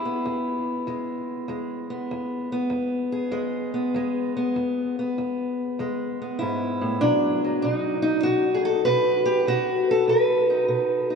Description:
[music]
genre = acoustic country blues, solo or duo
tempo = 98 BPM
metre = 4/4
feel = swing 67% on 8ths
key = E major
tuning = A4 = 442 Hz
[part]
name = fingerpicked steel-string acoustic guitar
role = solo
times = 0.0-11.2 s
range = E2 to B4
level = -22 LUFS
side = equal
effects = none
[sound]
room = wet cathedral reverb, RT60 5.1 s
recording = in a vast, echoing space, nothing above 10.9 kHz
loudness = -22 LUFS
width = side -5 dB against mid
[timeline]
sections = 0.0-11.2 A section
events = none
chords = 0.0 E; 7.0 B

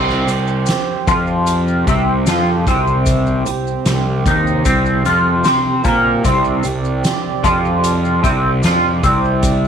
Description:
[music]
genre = psychedelic rock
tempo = 75 BPM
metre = 4/4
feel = straight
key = unclear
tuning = A4 = 438 Hz
[part]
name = hand-pumped harmonium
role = sustained chords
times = 0.0-9.7 s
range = C4 to D5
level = -24 LUFS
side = right 12 dB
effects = stereo widening
[part]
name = twangy electric guitar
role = riff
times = 0.0-9.7 s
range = C3 to C5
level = -16 LUFS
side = equal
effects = flanger, double-tracked left and right
[part]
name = fuzz picked electric bass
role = bass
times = 0.0-9.7 s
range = C2 to C3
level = -18 LUFS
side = equal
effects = overdrive
[part]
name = swarming drone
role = drone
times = 0.7-9.7 s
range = C2 to C3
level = -26 LUFS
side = left 2 dB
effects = built-in reverb
[part]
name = soft-mallet drum kit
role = drums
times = 0.1-9.6 s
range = hi-hat, kick drum, snare drum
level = -20 LUFS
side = equal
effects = none
[part]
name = maracas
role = percussion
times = 0.1-9.7 s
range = none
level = -31 LUFS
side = left 13 dB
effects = none
[sound]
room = little or no reverb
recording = 1960s-style stereo with parts hard left and right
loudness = -13 LUFS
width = side -8 dB against mid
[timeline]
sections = 0.0-9.7 A section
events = none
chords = 0.0 Csus2

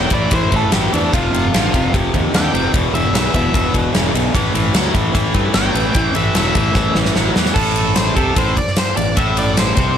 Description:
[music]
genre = blues rock power trio and southern rock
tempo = 149 BPM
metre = 4/4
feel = straight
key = A minor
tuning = A4 = 437 Hz
[part]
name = octave-fuzz lead guitar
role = melody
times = 0.0-10.0 s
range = D4 to G5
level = -21 LUFS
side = equal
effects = distortion
[part]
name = cranked stack guitar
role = riff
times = 0.0-10.0 s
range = E2 to F#3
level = -18 LUFS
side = left 1 dB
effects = overdrive
[part]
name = fuzz fingered electric bass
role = bass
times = 0.0-10.0 s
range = E1 to G2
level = -21 LUFS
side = equal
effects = overdrive
[part]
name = huge arena drum kit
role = drums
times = 0.1-9.9 s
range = crash cymbal, kick drum, ride cymbal, snare drum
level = -18 LUFS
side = equal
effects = none
[sound]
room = studio ambience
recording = lossy compression artefacts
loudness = -13 LUFS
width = side -9 dB against mid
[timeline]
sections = 0.0-7.6 A section; 7.6-10.0 B section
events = drum fill 6.8-7.6; lead electric guitar solo 7.6-10.0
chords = 0.0 A5; 1.1 F7(no3); 2.7 E5; 4.3 A5; 7.6 Am

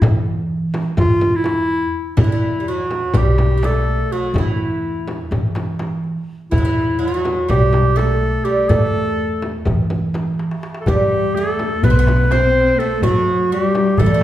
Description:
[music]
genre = Turkish makam ensemble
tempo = 249 BPM (eighths)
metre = 9/8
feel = straight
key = E makam ussak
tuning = A4 = 439 Hz
[part]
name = warm clarinet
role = melody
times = 0.0-14.2 s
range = E4 to C5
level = -19 LUFS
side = equal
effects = none
[part]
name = upright bass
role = bass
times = 0.0-14.2 s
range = B1 to E3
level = -20 LUFS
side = equal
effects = none
[part]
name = darbuka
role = percussion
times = 0.0-14.2 s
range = none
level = -23 LUFS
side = equal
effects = none
[part]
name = frame drum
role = percussion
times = 0.0-14.1 s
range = none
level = -22 LUFS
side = equal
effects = none
[part]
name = oud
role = second line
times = 2.2-14.2 s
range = D3 to C4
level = -24 LUFS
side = right 2 dB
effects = none
[part]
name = dark chamber cello section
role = second line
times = 10.9-14.2 s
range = F#3-30c to C4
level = -22 LUFS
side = left 3 dB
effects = none
[sound]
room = wet recital hall reverb, RT60 1.4 s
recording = heard from further back in the room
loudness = -15 LUFS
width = side -13 dB against mid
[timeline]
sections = 0.0-2.2 A section; 2.2-14.2 B section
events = drum fill 10.4-10.9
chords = none

